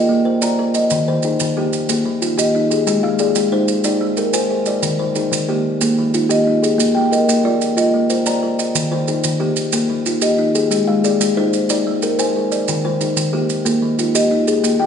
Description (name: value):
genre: southern african traditional, mbira-style interlocking cycle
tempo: 122 BPM (dotted quarters)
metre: 12/8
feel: straight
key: unclear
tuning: A4 = 439 Hz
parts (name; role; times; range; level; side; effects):
- kalimba; arpeggios; 0.0-14.9 s; Eb3 to G5; -17 LUFS; left 2 dB; none
- kalimba; arpeggios; 0.0-14.9 s; Eb3 to Bb5; -20 LUFS; right 2 dB; none
- maracas; percussion; 0.4-14.8 s; none; -24 LUFS; right 7 dB; none
room: wet recital hall reverb, RT60 1.7 s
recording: recorded in a church or concert hall, nothing above 10.5 kHz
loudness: -15 LUFS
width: side -7 dB against mid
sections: 0.0-14.6 A section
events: none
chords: 0.0 Bb; 0.9 Eb; 2.9 Ab; 4.8 Eb; 6.8 Bb; 8.8 Eb; 10.7 Ab; 12.7 Eb